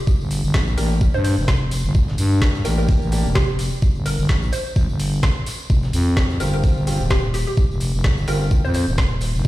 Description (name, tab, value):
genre	bass house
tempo	128 BPM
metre	4/4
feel	swing 57% on 16ths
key	G minor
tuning	A4 = 439 Hz
part	hollow square pluck	melody	0.0-8.8 s	G4 to C5	-29 LUFS	equal	ensemble chorus, dub echo
part	breakbeat sampler-style drum kit	drums	0.1-9.5 s	hi-hat, snare drum, tambourine	-38 LUFS	left 1 dB	none
part	electronic kick drum	drums	0.1-9.5 s	none	-18 LUFS	equal	overdrive
part	tambourine	percussion	0.1-9.5 s	none	-36 LUFS	left 3 dB	none
part	growling FM bass	bass	0.2-9.5 s	Eb1 to G2	-20 LUFS	equal	tube saturation, sidechain pumping
part	garage drum kit	drums	0.3-9.3 s	hi-hat, snare drum	-29 LUFS	equal	overdrive
part	clear concert grand piano	stabs	0.8-3.3, 6.4-8.4 s	Bb3 to G4	-30 LUFS	right 1 dB	vintage 12-bit sampler grit, sidechain pumping, dub echo
room	digital ambience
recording	played on a big sound system in a bare room, large studio reverb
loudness	-17 LUFS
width	side -16 dB against mid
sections	0.0-9.5 A section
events	none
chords	0.0 Gm; 5.7 Fsus2